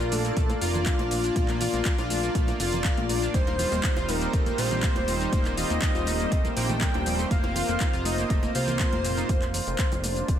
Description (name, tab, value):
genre	progressive house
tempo	121 BPM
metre	4/4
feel	straight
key	Bb major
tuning	A4 = 440 Hz
part	warm velvety synth lead	melody	0.0-10.4 s	F4 to G5	-32 LUFS	left 2 dB	chorus, sidechain pumping, ping-pong delay
part	airy dreamy lead	second line	0.0-9.4 s	F4 to G5	-36 LUFS	left 1 dB	chorus, sidechain pumping, ping-pong delay
part	lush unison pad	sustained chords	0.1-10.4 s	Eb3 to G4	-35 LUFS	equal	chorus, sidechain pumping
part	analog pluck	arpeggios	0.0-9.2 s	Bb2 to Bb4	-34 LUFS	left 2 dB	chorus, sidechain pumping, ping-pong delay
part	soft supersaw	stabs	0.0-9.3 s	G3 to D5	-32 LUFS	right 4 dB	sidechain pumping, ping-pong delay
part	fat analog bass	bass	0.0-10.4 s	Eb1 to C2	-31 LUFS	equal	sidechain pumping
part	deep house drum kit	drums	0.0-10.4 s	handclaps, hi-hat, shaker	-33 LUFS	equal	overdrive, sidechain pumping on hats, studio reverb, sidechain pumping on perc
part	bongos and congas	percussion	0.0-10.1 s	none	-38 LUFS	right 2 dB	none
part	electronic kick drum	drums	0.4-10.4 s	none	-26 LUFS	equal	overdrive, studio reverb
room	digital ambience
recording	none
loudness	-23 LUFS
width	side -10 dB against mid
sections	0.0-10.4 A section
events	none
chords	0.0 Bb; 3.3 Eb6; 7.3 Fsus4